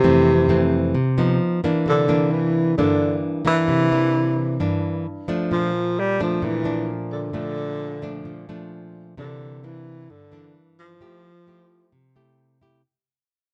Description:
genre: bossa nova.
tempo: 131 BPM.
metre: 4/4.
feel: straight.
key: F major.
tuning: A4 = 440 Hz.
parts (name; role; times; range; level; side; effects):
breathy tenor saxophone; melody; 0.0-12.3 s; C3 to G3; -23 LUFS; equal; none.
nylon-string guitar; accompaniment; 0.0-12.8 s; F2 to G4; -24 LUFS; equal; none.
room: light reverb.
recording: close, detailed microphones.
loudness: -21 LUFS.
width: mono.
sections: 0.0-12.8 A section.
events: fade-out 0.0-12.8.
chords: 0.0 Fmaj7; 1.4 Bbadd11; 1.9 C9; 5.5 Bbmaj7; 9.2 C9; 11.0 Fmaj9.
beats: | 0.03 0.49 0.95 1.40 | 1.86 2.32 2.77 3.23 | 3.69 4.15 4.60 5.06 | 5.52 5.97 6.43 6.89 | 7.35 7.81 8.26 8.72 | 9.18 9.64 10.09 10.55 | 11.01 11.47 11.93 12.38.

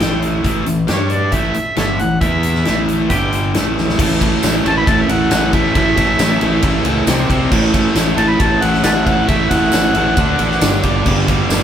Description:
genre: classic rock.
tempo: 136 BPM.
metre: 4/4.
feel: straight.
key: A mixolydian.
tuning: A4 = 439 Hz.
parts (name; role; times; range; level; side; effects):
overdriven harmonica; melody; 0.0-10.8 s; A4 to B5; -19 LUFS; equal; none.
overdriven electric guitar; riff; 0.0-11.6 s; G2 to D5; -20 LUFS; left 6 dB; none.
raw garage guitar; riff; 0.0-11.6 s; G2 to G4; -20 LUFS; right 6 dB; overdrive.
fuzz fingered electric bass; bass; 0.0-11.6 s; G1 to G2; -20 LUFS; equal; overdrive.
big rock drum kit; drums; 0.0-11.6 s; crash cymbal, hi-hat, kick drum, ride cymbal, snare drum; -18 LUFS; equal; none.
bright tonewheel organ; sustained chords; 4.0-11.6 s; B3 to F5; -31 LUFS; equal; none.
thick fuzz guitar; riff; 4.0-11.6 s; G2 to D4; -24 LUFS; equal; none.
tambourine; percussion; 4.4-11.6 s; none; -30 LUFS; right 6 dB; none.
room: moderate stone room reverb, RT60 1.3 s.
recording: band playing live in one room.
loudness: -12 LUFS.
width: side -9 dB against mid.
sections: 0.0-4.0 A section; 4.0-11.6 B section.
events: drum fill 3.8.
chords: 0.0 A5; 0.9 G5; 1.3 A5; 2.2 E5; 2.7 A5; 3.1 G5; 3.5 A5; 4.0 A6; 7.1 C5; 7.5 A6; 10.2 D5; 10.6 G5; 11.1 G.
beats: 0.00 | 0.45 0.89 1.33 1.77 | 2.22 2.66 3.10 3.55 | 3.99 4.43 4.87 5.31 | 5.75 6.20 6.64 7.08 | 7.52 7.96 8.40 8.85 | 9.29 9.73 10.17 10.62 | 11.06 11.50.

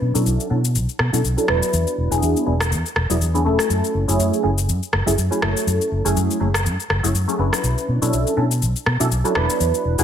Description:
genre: filtered disco house.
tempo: 122 BPM.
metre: 4/4.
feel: swing 56% on 16ths.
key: F# minor.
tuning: A4 = 440 Hz.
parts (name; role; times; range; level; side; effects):
funky polysynth comp; accompaniment; 0.0-10.0 s; F#3 to B4; -21 LUFS; equal; chorus, phaser, low-pass filter.
fingered electric bass; bass; 0.0-10.0 s; E1 to B2; -20 LUFS; equal; low-pass filter.
electronic shaker and rim click; drums; 0.2-10.0 s; none; -24 LUFS; left 2 dB; none.
room: light reverb.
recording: none.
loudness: -17 LUFS.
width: side -9 dB against mid.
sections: 0.0-10.0 A section.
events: filter sweep 0.0-10.0.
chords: 0.0 Bm11; 1.5 E7; 3.7 F#m7; 7.6 Bm11; 9.4 E7(no3).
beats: 0.26 0.75 1.24 | 1.73 2.23 2.72 3.21 | 3.70 4.19 4.68 5.18 | 5.67 6.16 6.65 7.14 | 7.64 8.13 8.62 9.11 | 9.60.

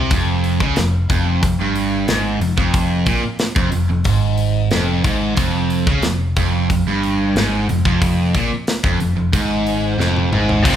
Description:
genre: hard rock.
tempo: 91 BPM.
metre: 4/4.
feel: straight.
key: F minor.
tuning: A4 = 441 Hz.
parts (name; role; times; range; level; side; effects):
cranked stack guitar; riff; 0.0-10.8 s; F2 to F3; -19 LUFS; right 5 dB; overdrive.
crunchy overdriven guitar; riff; 0.0-10.8 s; F2 to F3; -22 LUFS; left 6 dB; phaser.
modern bright picked electric bass; bass; 0.0-10.8 s; F1 to Db2; -22 LUFS; left 1 dB; none.
tight metal drum kit; drums; 0.1-10.8 s; crash cymbal, hi-hat, kick drum, snare drum, toms; -20 LUFS; left 1 dB; none.
tight distorted guitar; riff; 10.6-10.8 s; F2 to F3; -17 LUFS; left 2 dB; distortion.
room: moderate large studio reverb, RT60 1.4 s.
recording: band playing live in one room.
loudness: -15 LUFS.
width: side -10 dB against mid.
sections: 0.0-10.6 A section.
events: drum fill 10.0-10.6.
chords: 0.0 Fm.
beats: | 0.12 0.78 1.43 2.09 | 2.75 3.41 4.07 4.72 | 5.38 6.04 6.70 7.36 | 8.02 8.67 9.33 9.99 | 10.65.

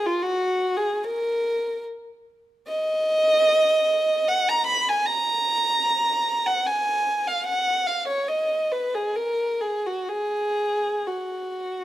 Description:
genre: classical, free, expressive piece for unaccompanied violin.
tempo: 60-77 BPM.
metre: 3/4.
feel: rubato.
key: F# major.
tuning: A4 = 440 Hz.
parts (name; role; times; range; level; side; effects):
dark violin; solo; 0.0-11.8 s; E#4 to B5; -21 LUFS; equal; none.
room: moderate recital hall reverb, RT60 1.7 s.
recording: close, detailed microphones.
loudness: -21 LUFS.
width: side -14 dB against mid.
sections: 0.0-11.8 A section.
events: none.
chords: none.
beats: | 0.24 1.04 1.84 | 2.67 3.50 4.29 | 5.07 5.86 6.66 | 7.45 8.27 9.14 | 10.07 11.07.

